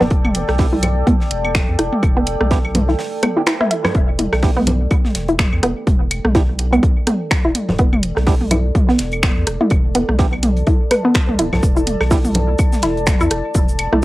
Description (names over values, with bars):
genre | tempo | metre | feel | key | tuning
minimal techno | 125 BPM | 4/4 | swing 57% on 16ths | E minor | A4 = 444 Hz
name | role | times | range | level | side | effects
resonant blip pluck | riff | 0.0-14.0 s | B3 to E5 | -19 LUFS | equal | chorus, sidechain pumping, cassette tape, analog delay
saturated sub bass | bass | 0.0-14.0 s | D1 to E2 | -21 LUFS | equal | tube saturation, sidechain pumping
tight funk drum kit | drums | 0.0-13.9 s | hi-hat, snare drum | -34 LUFS | right 1 dB | high-pass filter on hats, cassette tape, high-pass filter on snare, high-pass filter on room
organic electronic drum kit | percussion | 0.0-14.0 s | claves, congas, rim click, toms | -21 LUFS | equal | cassette tape, analog delay
deep dark ambient pad | texture | 0.0-14.0 s | A4 to A5 | -26 LUFS | equal | chorus, built-in reverb, sidechain pumping, cassette tape
electronic kick drum | drums | 0.1-13.7 s | none | -16 LUFS | equal | overdrive, cassette tape
house drum kit | drums | 0.3-13.9 s | cabasa, finger snaps, hi-hat, rim click | -21 LUFS | equal | overdrive, cassette tape
percussive organ stab | stabs | 0.6-12.2 s | B3 to G4 | -26 LUFS | right 6 dB | chorus, cassette tape, analog delay
room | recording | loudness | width
light reverb | home recording on cassette | -14 LUFS | side -18 dB against mid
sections
0.0-14.0 A section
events
drum fill 3.5-4.0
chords
0.0 Em7